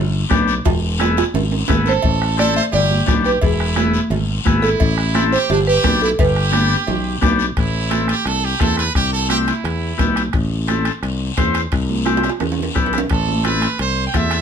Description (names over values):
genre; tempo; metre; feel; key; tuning
latin, cumbia; 174 BPM; 4/4; straight; A minor; A4 = 441 Hz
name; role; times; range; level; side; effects
modern bright fingered electric bass; bass; 0.0-14.4 s; E1 to E2; -20 LUFS; equal; none
combo organ; accompaniment; 0.3-14.4 s; B3 to C5; -21 LUFS; left 5 dB; none
bombo; percussion; 0.3-14.4 s; none; -21 LUFS; left 2 dB; none
congas; percussion; 0.3-14.3 s; none; -24 LUFS; right 3 dB; none
guiro; percussion; 0.3-14.4 s; none; -29 LUFS; left 6 dB; none
timbales and cowbell; percussion; 0.3-14.4 s; none; -26 LUFS; right 7 dB; none
buzzing marimba with medium hard mallets; melody; 1.9-7.2 s; G4 to E5; -20 LUFS; right 2 dB; none
brilliant trumpet; second line; 1.9-10.1, 13.1-14.4 s; D4 to G5; -22 LUFS; right 6 dB; none
room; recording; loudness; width
moderate studio reverb, RT60 0.6 s; band playing live in one room; -15 LUFS; side -7 dB against mid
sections
0.0-7.6 A section; 7.6-14.4 B section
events
drum fill 0.7-2.0, 12.1-13.1; trumpet solo 7.6-14.4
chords
0.0 G; 0.7 E; 2.0 Am; 2.7 G; 3.4 E; 4.8 Am; 5.5 G; 7.6 Am; 8.9 C; 9.6 Em; 10.3 Am; 11.7 C; 12.4 Em; 13.1 Amadd9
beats
0.31 | 0.66 1.00 1.35 1.69 | 2.04 2.38 2.73 3.08 | 3.42 3.77 4.11 4.46 | 4.80 5.15 5.49 5.84 | 6.18 6.53 6.88 7.22 | 7.57 7.91 8.26 8.60 | 8.95 9.30 9.64 9.99 | 10.33 10.68 11.03 11.37 | 11.72 12.06 12.41 12.75 | 13.10 13.45 13.79 14.14